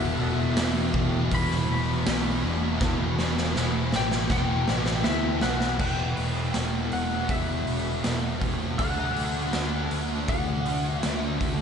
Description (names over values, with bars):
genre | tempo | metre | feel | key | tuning
rock, shoegaze and dream pop | 80 BPM | 4/4 | straight | E minor | A4 = 439 Hz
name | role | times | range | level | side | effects
lightly driven lead guitar | melody | 0.0-11.4 s | E5 to B5 | -32 LUFS | left 2 dB | wide subtle chorus, ping-pong delay
thick fuzz guitar | riff | 0.0-11.6 s | E2 to D4 | -27 LUFS | equal | distortion, ensemble chorus
picked electric bass | bass | 0.0-11.6 s | E1 to D2 | -31 LUFS | equal | none
raw garage drum kit | drums | 0.6-11.6 s | crash cymbal, hi-hat, kick drum, snare drum | -28 LUFS | right 1 dB | none
room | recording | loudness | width
moderate huge ambient reverb, RT60 6.5 s | dreamy mix soaked in reverb, nothing above 10.7 kHz | -23 LUFS | side -7 dB against mid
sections
0.0-5.8 A section; 5.8-11.6 B section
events
drum fill 2.8-5.8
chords
0.0 E5; 2.8 Em; 8.8 D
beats
0.57 1.31 2.06 | 2.80 3.55 4.29 5.04 | 5.79 6.54 7.29 8.04 | 8.78 9.53 10.28 11.03